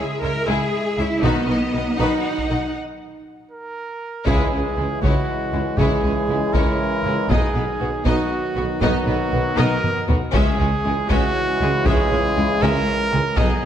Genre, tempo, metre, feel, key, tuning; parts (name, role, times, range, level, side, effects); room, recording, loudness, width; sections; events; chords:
cinematic, epic orchestral film score; 79 BPM (dotted quarters); 6/8; straight; C# dorian; A4 = 440 Hz
warm symphonic violin section; melody; 0.0-13.6 s; E4 to F#5; -32 LUFS; left 4 dB
warm symphonic violin section; second line; 0.0-13.7 s; G#3 to F#5; -29 LUFS; left 2 dB
warm symphonic viola section; accompaniment; 0.0-13.6 s; D#3 to E4; -27 LUFS; equal
mellow French horn section; sustained chords; 0.0-13.7 s; F#3 to E4; -29 LUFS; left 4 dB
rich symphonic cello section; bass; 0.0-13.5 s; B2 to A#4; -27 LUFS; right 1 dB
rich symphonic double bass section; bass; 0.0-13.7 s; B1 to C#2; -26 LUFS; right 2 dB
taiko ensemble; drums; 1.2-13.7 s; -24 LUFS; left 1 dB
clear trumpet; stabs; 3.5-13.7 s; F#4 to A#4; -24 LUFS; right 2 dB
warm trombone section; sustained chords; 4.3-13.7 s; C#3 to F#3; -29 LUFS; right 3 dB
clear tuba; bass; 4.3-13.5 s; B1 to C#2; -30 LUFS; right 3 dB
wet scoring stage reverb, RT60 1.9 s; -18 LUFS; side -9 dB against mid
0.0-4.3 A section; 4.3-13.7 B section
break 2.8-4.3; band accent 4.3-4.8; drum fill 9.6-10.3
0.0 C#m; 1.2 B; 2.8 N.C.; 4.3 C#m; 7.3 B; 10.3 C#m